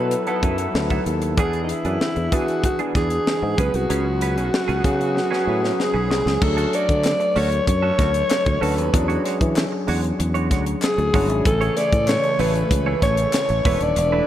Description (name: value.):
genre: polished 1980s jazz-funk pop.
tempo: 95 BPM.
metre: 4/4.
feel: straight.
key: unclear.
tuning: A4 = 440 Hz.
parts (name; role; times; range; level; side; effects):
breathy alto saxophone; melody; 0.0-14.3 s; D#4 to D5; -22 LUFS; equal; analog delay.
overdriven tine electric piano; accompaniment; 0.0-14.3 s; C#3 to G#5; -26 LUFS; left 1 dB; wide subtle chorus.
sustaining fretless electric bass; bass; 0.0-14.2 s; D#1 to E3; -23 LUFS; equal; none.
semi-hollow electric guitar; riff; 0.1-14.3 s; E3 to C#5; -30 LUFS; right 6 dB; analog chorus.
tight funk drum kit; drums; 0.1-14.1 s; crash cymbal, hi-hat, kick drum, snare drum; -24 LUFS; equal; none.
group handclap; percussion; 7.0-13.5 s; none; -38 LUFS; left 3 dB; none.
lush unison pad; sustained chords; 11.4-14.3 s; C#3 to A4; -30 LUFS; equal; chorus.
room: moderate plate reverb, RT60 3.2 s.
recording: dreamy mix soaked in reverb.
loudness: -18 LUFS.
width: side -12 dB against mid.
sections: 0.0-6.4 A section; 6.4-14.3 B section.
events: drum fill 5.2-6.4.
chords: 0.0 B7sus4; 1.4 E7; 3.6 C#7sus4; 6.4 Dmaj7; 8.9 E13; 11.5 Amaj7; 13.7 E7sus4.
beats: 0.11 0.74 | 1.38 2.01 2.64 3.27 | 3.90 4.53 5.16 5.79 | 6.42 7.05 7.68 8.31 | 8.94 9.56 10.19 10.82 | 11.45 12.08 12.71 13.34 | 13.97.